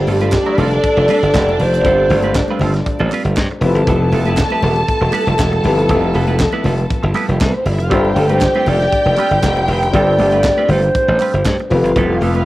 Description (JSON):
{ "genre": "disco", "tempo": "119 BPM", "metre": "4/4", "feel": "straight", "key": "unclear", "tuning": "A4 = 437 Hz", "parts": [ { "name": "mellow hollow alto flute", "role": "melody", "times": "0.0-2.6, 8.2-11.7 s", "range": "G4 to D5", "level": "-16 LUFS", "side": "right 1 dB", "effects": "cassette tape" }, { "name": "dark studio violin section", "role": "second line", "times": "0.0-12.4 s", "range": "G3 to A5", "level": "-20 LUFS", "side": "equal", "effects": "none" }, { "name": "dark grand piano", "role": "accompaniment", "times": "0.0-12.4 s", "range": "F3 to C5", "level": "-21 LUFS", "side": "left 3 dB", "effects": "none" }, { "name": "semi-hollow electric guitar", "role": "accompaniment", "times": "0.0-12.4 s", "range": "G3 to B4", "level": "-23 LUFS", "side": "right 4 dB", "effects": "phaser" }, { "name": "glassy slap bass", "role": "bass", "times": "0.1-12.4 s", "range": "E1 to G2", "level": "-16 LUFS", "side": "equal", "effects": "none" }, { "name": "tight funk drum kit", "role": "drums", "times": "0.1-12.4 s", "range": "handclaps, hi-hat, kick drum, snare drum", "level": "-22 LUFS", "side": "equal", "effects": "cassette tape" }, { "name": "congas", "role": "percussion", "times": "0.1-12.4 s", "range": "none", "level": "-26 LUFS", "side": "left 2 dB", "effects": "none" }, { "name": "group handclap", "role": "percussion", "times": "0.3-11.6 s", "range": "none", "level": "-30 LUFS", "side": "right 5 dB", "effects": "none" } ], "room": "light reverb, studio reverb", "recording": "home recording on cassette", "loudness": "-12 LUFS", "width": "side -16 dB against mid", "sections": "0.0-12.4 A section", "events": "none", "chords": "0.0 G9sus4; 3.6 Fmaj9#11; 7.9 G9sus4; 11.7 Fmaj9#11" }